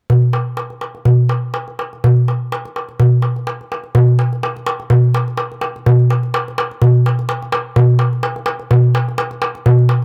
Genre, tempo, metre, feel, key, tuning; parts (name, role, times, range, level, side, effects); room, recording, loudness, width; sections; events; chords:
balkan folk; 126 BPM; 2/4; swing 54% on 16ths
darbuka; percussion; 0.1-10.0 s; -15 LUFS; equal
little or no reverb; -15 LUFS; mono
0.1-4.0 A section; 4.0-10.0 B section